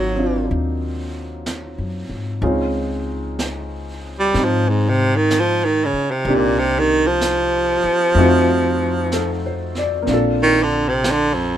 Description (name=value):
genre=jazz ballad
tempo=63 BPM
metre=4/4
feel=swing 66% on 8ths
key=unclear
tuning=A4 = 440 Hz
part: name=bright baritone saxophone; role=melody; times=0.0-11.6 s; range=F2 to G3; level=-17 LUFS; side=right 2 dB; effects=none
part: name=warm concert grand piano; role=accompaniment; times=0.0-11.6 s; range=Gb3 to D5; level=-22 LUFS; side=equal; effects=none
part: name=upright bass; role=bass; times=0.0-11.6 s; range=Ab1 to Ab2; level=-23 LUFS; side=left 2 dB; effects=none
part: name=vintage brush drum kit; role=drums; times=0.5-11.6 s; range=brushed snare drum, hi-hat, snare drum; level=-30 LUFS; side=right 2 dB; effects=none
room=moderate booth ambience, RT60 0.2 s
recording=minimal, uncompressed stereo recording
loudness=-16 LUFS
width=side -10 dB against mid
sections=0.0-11.6 A section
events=baritone saxophone solo 0.0-11.6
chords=0.0 Ab13; 2.4 Dbmaj9; 6.3 Cm7; 8.2 F7b9; 10.1 Bbmaj9